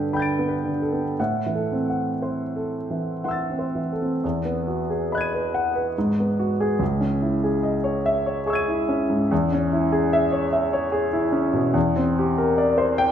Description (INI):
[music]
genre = classical, impressionist solo piano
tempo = 56-75 BPM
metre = 3/4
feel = rubato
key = E major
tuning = A4 = 440 Hz
[part]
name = warm grand piano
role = solo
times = 0.0-13.1 s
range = C#2 to D#7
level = -20 LUFS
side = equal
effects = none
[sound]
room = wet recital hall reverb, RT60 1.7 s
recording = minimal, uncompressed stereo recording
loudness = -20 LUFS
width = side -9 dB against mid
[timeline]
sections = 0.0-4.2 A section; 4.2-13.1 B section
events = none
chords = 0.0 Gadd9; 1.2 Am6; 4.2 Emaj9; 6.0 G#m7; 6.8 C#madd9; 9.3 E6; 11.8 C9/E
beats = 0.15 | 1.18 2.21 3.24 | 4.23 5.10 5.95 | 6.81 7.64 8.47 | 9.31 10.12 10.93 | 11.75 12.59